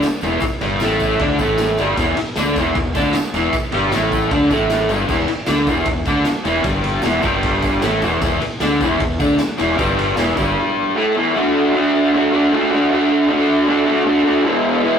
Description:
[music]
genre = garage rock duo or trio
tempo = 154 BPM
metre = 4/4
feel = straight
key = unclear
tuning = A4 = 435 Hz
[part]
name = raw garage guitar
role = riff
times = 0.0-15.0 s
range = E2 to F#4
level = -15 LUFS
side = equal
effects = overdrive
[part]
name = fuzz fingered electric bass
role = bass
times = 0.0-10.6 s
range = E1 to D2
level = -24 LUFS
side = equal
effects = overdrive
[part]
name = raw garage drum kit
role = drums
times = 0.0-10.5 s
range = crash cymbal, kick drum, ride cymbal, snare drum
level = -24 LUFS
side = equal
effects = none
[part]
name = tambourine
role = percussion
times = 0.0-10.5 s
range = none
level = -39 LUFS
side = right 3 dB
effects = none
[sound]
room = wet stone room reverb, RT60 1.1 s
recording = rough rehearsal-room recording, tube saturation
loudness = -15 LUFS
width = side -7 dB against mid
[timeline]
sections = 0.0-11.3 A section; 11.3-15.0 B section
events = none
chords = 0.0 Em7; 11.3 D; 14.4 E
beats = 0.03 | 0.42 0.81 1.20 1.59 | 1.98 2.37 2.76 3.15 | 3.54 3.92 4.32 4.71 | 5.09 5.49 5.88 6.27 | 6.66 7.05 7.44 7.83 | 8.22 8.61 9.00 9.39 | 9.78 10.17 10.56 10.95 | 11.34 11.73 12.12 12.51 | 12.90 13.29 13.67 14.06 | 14.45 14.84

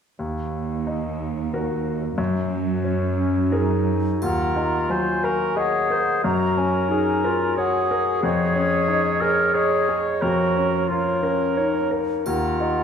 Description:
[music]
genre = cinematic, emotional film score for orchestra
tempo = 89 BPM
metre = 3/4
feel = rubato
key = unclear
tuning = A4 = 440 Hz
[part]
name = bright grand piano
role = accompaniment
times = 0.2-12.8 s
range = Eb2 to Eb5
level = -24 LUFS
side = left 2 dB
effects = none
[part]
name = clear studio cello section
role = bass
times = 0.2-4.0 s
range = Eb2 to Gb2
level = -25 LUFS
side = right 4 dB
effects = none
[part]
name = warm clarinet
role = second line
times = 3.2-12.8 s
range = Db4 to Bb4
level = -24 LUFS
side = left 1 dB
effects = none
[part]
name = bright baroque flute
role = second line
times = 4.2-12.8 s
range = Db5 to Bb5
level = -26 LUFS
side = right 1 dB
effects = none
[part]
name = warm oboe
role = second line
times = 4.2-12.8 s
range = Ab4 to Db5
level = -27 LUFS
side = right 2 dB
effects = none
[part]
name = triangle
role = percussion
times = 4.2-5.5, 12.3-12.8 s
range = none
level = -43 LUFS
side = equal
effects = none
[sound]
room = wet scoring stage reverb, RT60 1.9 s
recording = minimal, uncompressed stereo recording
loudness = -20 LUFS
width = side -7 dB against mid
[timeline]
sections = 0.2-4.2 A section; 4.2-12.8 B section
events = none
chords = 0.2 Ebm; 2.2 Gbadd9; 4.2 Ebm; 6.2 Gbadd9; 8.2 Dbadd9/F; 10.2 Bbm/F; 12.3 Ebm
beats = | 0.19 0.87 1.53 | 2.18 2.84 3.52 | 4.22 4.90 5.57 | 6.24 6.92 7.58 | 8.23 8.89 9.55 | 10.22 10.90 11.58 | 12.26

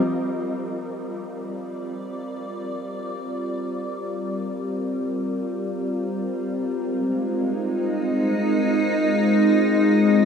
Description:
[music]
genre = ambient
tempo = free time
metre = none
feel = none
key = unclear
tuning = A4 = 439 Hz
[part]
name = evolving wavetable pad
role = sustained chords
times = 0.0-10.2 s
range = G3 to D5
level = -21 LUFS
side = equal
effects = chorus, built-in reverb
[sound]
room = wet huge ambient reverb, RT60 7.9 s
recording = dreamy mix soaked in reverb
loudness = -22 LUFS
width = side -6 dB against mid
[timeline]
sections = 0.1-10.2 A section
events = fade-in on ambient pad 0.1-10.2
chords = 0.1 Gm7; 6.6 Fm7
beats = free time

